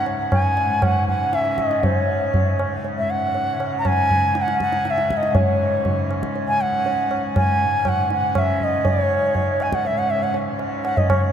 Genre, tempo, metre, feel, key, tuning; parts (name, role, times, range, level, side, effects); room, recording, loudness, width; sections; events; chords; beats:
indian classical, Hindustani; 120 BPM; 7/4; straight; C# raga bhimpalasi; A4 = 440 Hz
bright reedy bansuri; melody; 0.0-11.2 s; C#5 to A#5-21c; -20 LUFS; equal
tanpura; drone; 0.0-11.3 s; C#2 to C#3; -27 LUFS; equal
tabla; percussion; 0.1-11.3 s; -23 LUFS; right 1 dB
wet huge ambient reverb, RT60 7.8 s; in a vast, echoing space; -18 LUFS; side -8 dB against mid
0.0-11.3 A section
0.32 0.82 1.33 | 1.83 2.34 2.84 3.35 3.85 4.35 4.86 | 5.36 5.86 6.36 6.86 7.36 7.86 8.36 | 8.86 9.36 9.85 10.35 10.85